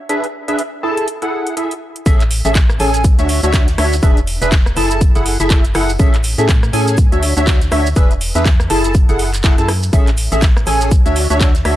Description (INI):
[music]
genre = piano house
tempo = 122 BPM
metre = 4/4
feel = swing 58% on 16ths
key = A major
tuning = A4 = 440 Hz
[part]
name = percussive organ stab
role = riff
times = 0.1-11.8 s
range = C#4 to A5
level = -17 LUFS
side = equal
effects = ensemble chorus, sidechain pumping, analog delay
[part]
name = house drum kit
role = drums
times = 0.1-11.8 s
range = handclaps, hi-hat, rim click, shaker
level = -22 LUFS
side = right 1 dB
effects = none
[part]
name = organ-like FM bass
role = bass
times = 2.1-11.8 s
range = E1 to A2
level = -18 LUFS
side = equal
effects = tube saturation, sidechain pumping
[part]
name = electronic kick drum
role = drums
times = 2.1-11.5 s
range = none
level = -12 LUFS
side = equal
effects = none
[part]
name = jazz brush drum kit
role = drums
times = 2.1-11.6 s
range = hi-hat, shaker, snare drum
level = -34 LUFS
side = right 1 dB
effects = none
[sound]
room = small room ambience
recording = dry, gritty hardware recording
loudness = -12 LUFS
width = side -14 dB against mid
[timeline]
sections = 0.0-2.1 A section; 2.1-11.8 B section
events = drop 2.1-11.8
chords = 0.1 E7; 0.8 F#m9; 2.1 Amaj7; 3.0 Dmaj9; 4.0 E7; 4.8 F#m9; 6.0 Amaj7; 7.0 Dmaj9; 8.0 E7; 8.7 F#m9; 9.9 Amaj7; 10.9 Dmaj9